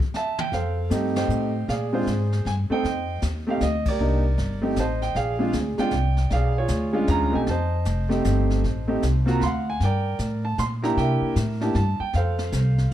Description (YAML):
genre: jazz piano trio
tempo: 155 BPM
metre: 3/4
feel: swing 64% on 8ths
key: F mixolydian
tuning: A4 = 438 Hz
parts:
  - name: jazz brush drum kit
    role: drums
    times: 0.0-12.9 s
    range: brushed snare drum, crash cymbal, hi-hat, kick drum, ride cymbal, snare drum, toms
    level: -32 LUFS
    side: left 2 dB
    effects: none
  - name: warm baby grand piano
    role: melody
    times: 0.2-12.9 s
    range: Ab3 to C6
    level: -24 LUFS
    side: right 2 dB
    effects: none
  - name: upright bass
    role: bass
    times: 0.5-12.9 s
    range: F1 to C3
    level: -24 LUFS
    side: equal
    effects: none
room: light reverb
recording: dark, warm production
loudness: -21 LUFS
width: side -12 dB against mid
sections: 0.5-12.9 A section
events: band accent 1.1, 3.8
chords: 0.0 N.C.; 0.5 F7; 1.7 Bb7; 2.8 F7(no3); 4.0 Cm7; 4.8 Am7b5; 5.2 Bb7; 6.3 Bdim7; 7.5 F7; 8.6 Adim; 9.4 D(#9); 9.8 Gm; 11.0 C7; 12.1 F